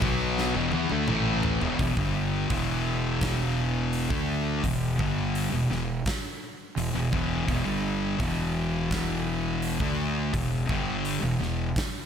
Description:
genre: stoner and doom metal.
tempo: 84 BPM.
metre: 4/4.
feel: straight.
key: E minor.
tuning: A4 = 440 Hz.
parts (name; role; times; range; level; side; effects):
thick fuzz guitar; riff; 0.0-11.7 s; E2 to D4; -29 LUFS; left 8 dB; distortion.
thick fuzz guitar; riff; 0.0-11.7 s; E2 to D4; -30 LUFS; right 10 dB; distortion.
thick fuzz guitar; riff; 0.0-1.8 s; E2 to B3; -31 LUFS; right 1 dB; distortion.
fuzz fingered electric bass; bass; 0.0-11.7 s; E1 to E2; -32 LUFS; equal; overdrive.
big rock drum kit; drums; 0.0-11.9 s; hi-hat, kick drum, snare drum, toms; -32 LUFS; equal; none.
room: little or no reverb.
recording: none.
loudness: -25 LUFS.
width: side -8 dB against mid.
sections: 0.0-1.8 A section; 1.8-12.1 B section.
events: drum fill 0.4-1.8.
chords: 0.0 E5; 1.8 Em.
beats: 0.38 1.09 | 1.80 2.51 3.22 3.93 | 4.64 5.35 6.06 6.78 | 7.49 8.20 8.91 9.62 | 10.34 11.05 11.76.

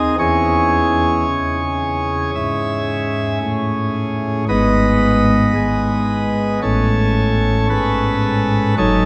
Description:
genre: classical, chorale-style piece for pipe organ.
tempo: 56 BPM.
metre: 4/4.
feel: straight.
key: C# minor.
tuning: A4 = 439 Hz.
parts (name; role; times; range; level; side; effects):
chamber organ, principal chorus; solo; 0.0-9.1 s; F#1 to E5; -17 LUFS; equal; none.
room: wet cathedral reverb, RT60 6.7 s.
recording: none.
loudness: -17 LUFS.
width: mono.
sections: 0.0-9.1 A section.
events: none.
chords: 0.2 C#m/E; 4.5 G#m; 6.6 A.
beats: | 0.19 1.27 2.35 3.42 | 4.49 5.56 6.63 7.71 | 8.79.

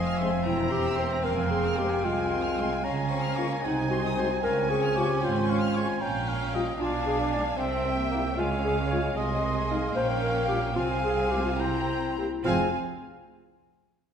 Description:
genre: quick classical-period movement for symphony orchestra.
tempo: 75 BPM (dotted quarters).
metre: 6/8.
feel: straight.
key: F minor.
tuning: A4 = 442 Hz.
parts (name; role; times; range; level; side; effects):
rich chamber violin section; melody; 0.0-12.8 s; F5 to Bb5; -38 LUFS; left 3 dB; none.
rich chamber violin section; second line; 0.0-12.8 s; Db5 to F6; -37 LUFS; left 2 dB; none.
silver concert flute; second line; 0.0-12.8 s; F5 to C6; -35 LUFS; equal; none.
warm oboe; second line; 0.0-12.7 s; D5 to Bb5; -35 LUFS; right 1 dB; none.
mellow bassoon; accompaniment; 0.0-12.7 s; Ab3 to D4; -34 LUFS; equal; none.
rich chamber viola section; accompaniment; 0.0-12.8 s; Ab3 to Eb4; -36 LUFS; right 1 dB; none.
warm studio cello section; bass; 0.0-12.8 s; C2 to Db3; -33 LUFS; right 4 dB; none.
warm studio double bass section; bass; 0.0-12.8 s; E1 to Db2; -33 LUFS; right 3 dB; none.
dark French horn section; sustained chords; 0.2-12.7 s; G3 to Ab4; -36 LUFS; left 3 dB; none.
mellow clarinet; second line; 0.5-12.7 s; Eb4 to D5; -30 LUFS; left 3 dB; none.
room: wet scoring stage reverb, RT60 1.5 s.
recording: none.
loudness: -24 LUFS.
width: side -8 dB against mid.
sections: 0.0-12.4 A section; 12.4-14.1 B section.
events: none.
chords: 0.5 C7/E; 1.2 Fm; 2.8 Db; 3.6 Ab7/C; 4.4 Db; 6.0 Gm7b5/Bb; 6.8 Bdim7; 7.6 C; 8.4 Db; 9.2 Ab/C; 10.0 Gm7b5/Bb; 10.8 Fm/C; 11.6 C7; 12.4 Fm.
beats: 0.45 | 1.25 2.05 | 2.85 3.64 | 4.44 5.23 | 6.01 6.80 | 7.59 8.38 | 9.16 9.96 | 10.76 11.59 | 12.45.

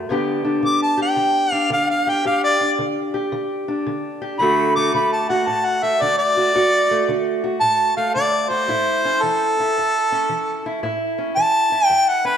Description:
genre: acoustic country blues, solo or duo.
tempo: 112 BPM.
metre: 4/4.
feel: swing 66% on 8ths.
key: D major.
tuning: A4 = 440 Hz.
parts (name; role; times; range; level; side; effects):
fingerpicked steel-string acoustic guitar; accompaniment; 0.0-12.4 s; D2 to G4; -22 LUFS; equal; none.
warm harmonica; melody; 0.7-12.4 s; A4 to D6; -17 LUFS; equal; none.
room: wet lush hall reverb, RT60 2.1 s.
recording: rough home demo mix.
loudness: -17 LUFS.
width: side -8 dB against mid.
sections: 0.0-12.4 A section.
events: harmonica solo 0.0-12.4.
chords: 0.1 G; 4.4 D; 8.7 A.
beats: | 0.10 0.64 1.17 1.71 | 2.25 2.78 3.32 3.85 | 4.39 4.93 5.46 6.00 | 6.54 7.07 7.61 8.15 | 8.68 9.22 9.75 10.29 | 10.82 11.36 11.89.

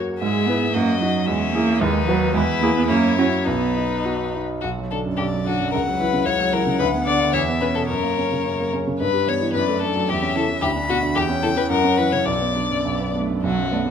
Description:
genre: quick classical-period movement for piano quartet.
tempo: 102-113 BPM.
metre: 2/4.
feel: rubato.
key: B major, B minor from 4.6 s.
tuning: A4 = 439 Hz.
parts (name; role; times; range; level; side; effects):
clear concert grand piano; accompaniment; 0.0-13.9 s; B1 to B4; -22 LUFS; right 2 dB; none.
rich violin; melody; 0.2-13.9 s; F#4 to E5; -24 LUFS; left 8 dB; none.
clear violin; second line; 0.2-13.9 s; C#4 to B5; -27 LUFS; left 4 dB; none.
rich cello; second line; 0.2-13.8 s; B2 to C#4; -25 LUFS; right 5 dB; none.
room: moderate recital hall reverb, RT60 1.6 s.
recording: none.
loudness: -18 LUFS.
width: side -7 dB against mid.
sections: 0.0-4.6 A section; 4.6-13.4 B section.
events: none.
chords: 0.2 E/G#; 0.7 D#m/F#; 1.3 C#m/E; 1.8 B/D#; 2.4 E; 2.9 F#7; 3.5 B; 4.6 Bm; 5.7 F#5/C#; 6.8 Bm/D; 7.3 Aadd9/E (rootless); 7.9 F#; 9.0 Em/G; 9.6 D/F#; 10.1 C#dim/E; 10.6 Bm/D; 11.2 C#dim/E; 11.7 F#7; 12.3 Bm.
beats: | 0.21 0.75 | 1.28 1.82 | 2.35 2.90 | 3.47 4.05 | 4.63 5.18 | 5.72 6.26 | 6.79 7.33 | 7.88 8.45 | 9.01 9.55 | 10.10 10.63 | 11.17 11.71 | 12.28 12.86 | 13.44.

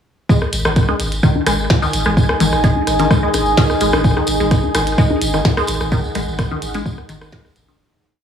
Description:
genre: minimal techno.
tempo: 128 BPM.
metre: 4/4.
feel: straight.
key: unclear.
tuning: A4 = 440 Hz.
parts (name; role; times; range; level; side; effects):
resonant blip pluck; riff; 0.3-7.7 s; D#3 to G#3; -21 LUFS; equal; phaser, vintage 12-bit sampler grit, sidechain pumping, digital delay.
electronic kick drum; drums; 0.3-7.4 s; none; -15 LUFS; equal; none.
tambourine; percussion; 0.3-7.8 s; none; -27 LUFS; equal; none.
deep dark ambient pad; texture; 1.5-7.8 s; D#4 to G#5; -20 LUFS; right 1 dB; chorus, built-in reverb, sidechain pumping.
electronic rim click and congas; percussion; 0.4-7.8 s; none; -22 LUFS; left 3 dB; digital delay.
punchy sub bass; bass; 0.5-7.8 s; G#1; -22 LUFS; equal; sidechain pumping.
minimal click drum kit; drums; 0.5-7.7 s; hi-hat, snare drum; -23 LUFS; equal; none.
room: light reverb.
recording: studio reverb.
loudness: -14 LUFS.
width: side -8 dB against mid.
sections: 0.3-7.8 drop.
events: drop 0.3-7.8; fade-out 5.3-7.8.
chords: 0.3 G#5.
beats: | 0.29 0.76 1.23 1.70 | 2.17 2.64 3.11 3.58 | 4.04 4.51 4.98 5.45 | 5.92 6.39 6.86 7.33.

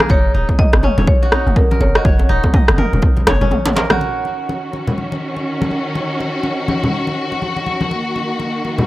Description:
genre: afro house.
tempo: 123 BPM.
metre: 4/4.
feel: swing 60% on 16ths.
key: Eb minor pentatonic.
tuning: A4 = 441 Hz.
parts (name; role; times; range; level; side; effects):
kora; arpeggios; 0.0-5.4 s; Bb3 to Eb5; -22 LUFS; right 1 dB; sidechain pumping, tape echo.
deep house drum kit; drums; 0.0-4.0 s; rim click, toms; -18 LUFS; equal; overdrive, low-pass filter on snare, low-pass filter on toms.
congas; percussion; 0.0-8.9 s; none; -22 LUFS; left 2 dB; none.
marimba with medium hard mallets; melody; 0.1-2.9 s; Bb4 to Eb5; -24 LUFS; left 1 dB; tape echo.
warm 808-style bass; bass; 0.1-3.5 s; Eb1 to Gb1; -17 LUFS; equal; sidechain pumping.
electronic kick drum; drums; 0.1-3.1 s; none; -14 LUFS; equal; overdrive.
djembe; percussion; 0.1-4.0 s; none; -23 LUFS; right 1 dB; none.
dark studio string section; sustained chords; 4.0-8.9 s; Eb3 to Gb4; -20 LUFS; equal; sidechain pumping.
room: little or no reverb.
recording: dry, gritty hardware recording.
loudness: -14 LUFS.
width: side -17 dB against mid.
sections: 0.0-4.0 A section; 4.0-8.9 B section.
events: drum fill 3.3-4.0.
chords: 0.1 Gb6; 4.0 Ebm7; 7.9 Gb6.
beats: | 0.10 0.59 1.08 1.56 | 2.05 2.54 3.03 3.52 | 4.00 4.49 4.98 5.47 | 5.96 6.44 6.93 7.42 | 7.91 8.39.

